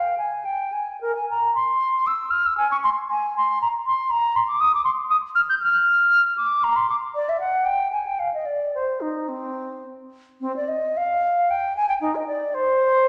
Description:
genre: classical, baroque-style fantasia for unaccompanied flute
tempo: 103-121 BPM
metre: 3/4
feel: rubato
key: C minor from 4.1 s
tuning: A4 = 440 Hz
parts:
  - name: concert flute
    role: solo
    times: 0.0-13.1 s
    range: C4 to G6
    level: -22 LUFS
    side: equal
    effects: none
room: wet recital hall reverb, RT60 1.6 s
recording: none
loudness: -22 LUFS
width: mono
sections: 0.0-10.4 A section; 10.4-13.1 B section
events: none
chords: none

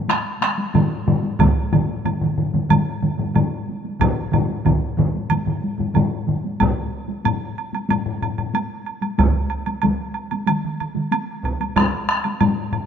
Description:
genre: japanese traditional, taiko drum ensemble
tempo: 93 BPM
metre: 4/4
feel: straight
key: none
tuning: none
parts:
  - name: solo taiko drums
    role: percussion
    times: 0.1-12.9 s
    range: none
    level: -23 LUFS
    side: left 6 dB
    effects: none
  - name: taiko ensemble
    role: percussion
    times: 0.1-12.6 s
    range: none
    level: -25 LUFS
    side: left 1 dB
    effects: none
  - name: taiko ensemble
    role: percussion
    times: 0.1-11.1 s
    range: none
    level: -22 LUFS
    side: right 3 dB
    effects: none
  - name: woodblock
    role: percussion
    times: 0.1-12.9 s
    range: none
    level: -27 LUFS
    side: right 6 dB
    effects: none
  - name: taiko ensemble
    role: percussion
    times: 1.4-11.9 s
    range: none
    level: -22 LUFS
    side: right 2 dB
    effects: none
room: moderate plate reverb, RT60 2.8 s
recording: minimal, uncompressed stereo recording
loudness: -18 LUFS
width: side -8 dB against mid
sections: 0.0-6.6 A section; 6.6-12.9 B section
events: none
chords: none

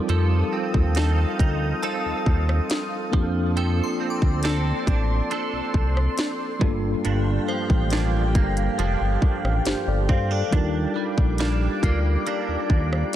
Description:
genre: contemporary R&B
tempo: 69 BPM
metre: 4/4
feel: straight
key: G minor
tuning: A4 = 440 Hz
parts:
  - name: mellow tine electric piano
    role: accompaniment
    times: 0.0-13.2 s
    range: G3 to F5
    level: -28 LUFS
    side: left 1 dB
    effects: medium stereo tremolo
  - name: glassy FM pad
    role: sustained chords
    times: 0.0-13.2 s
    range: G4 to Eb6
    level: -31 LUFS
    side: left 2 dB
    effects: ensemble chorus, built-in reverb, sidechain pumping
  - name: direct-recorded clean electric guitar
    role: arpeggios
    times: 0.0-13.2 s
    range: G2 to A4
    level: -30 LUFS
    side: right 7 dB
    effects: ensemble chorus, tape echo
  - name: smooth gliding synth bass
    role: bass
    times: 0.1-13.0 s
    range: F1 to G2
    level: -23 LUFS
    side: equal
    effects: none
  - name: trap drum kit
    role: drums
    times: 0.1-13.2 s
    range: hi-hat, kick drum, rim click, snare drum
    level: -22 LUFS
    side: equal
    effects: none
  - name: glassy synth bell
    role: texture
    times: 1.8-13.2 s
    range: F4 to D6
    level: -36 LUFS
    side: left 3 dB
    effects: chorus, tape echo
room: little or no reverb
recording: dense, heavily limited modern master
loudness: -20 LUFS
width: side -12 dB against mid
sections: 0.0-13.2 A section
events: none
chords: 0.0 F7; 3.1 Bbmaj9; 6.6 Gm7; 10.5 Ebmaj7

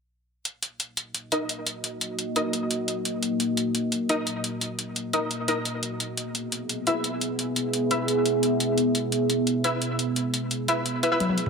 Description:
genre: dark technical drum and bass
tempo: 173 BPM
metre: 4/4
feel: straight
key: Eb phrygian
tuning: A4 = 442 Hz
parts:
  - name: deep dark ambient pad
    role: sustained chords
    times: 1.6-11.5 s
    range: Bb3 to E5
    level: -26 LUFS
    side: right 1 dB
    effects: chorus, built-in reverb
  - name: drum and bass drum kit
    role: drums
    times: 0.5-11.5 s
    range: hi-hat, toms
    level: -28 LUFS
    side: left 1 dB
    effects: none
  - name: orchestra-hit-like synth stab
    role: stabs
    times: 1.3-11.2 s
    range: Eb4 to E5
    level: -28 LUFS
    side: left 1 dB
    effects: built-in reverb, dub echo
room: moderate lush hall reverb, RT60 1.9 s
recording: none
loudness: -24 LUFS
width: side -5 dB against mid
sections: 0.5-11.5 A section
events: filter sweep on ambient pad 0.5-11.5; filter sweep on synth stab 0.5-11.5; drum fill 11.2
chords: 0.5 Ebm; 6.0 E

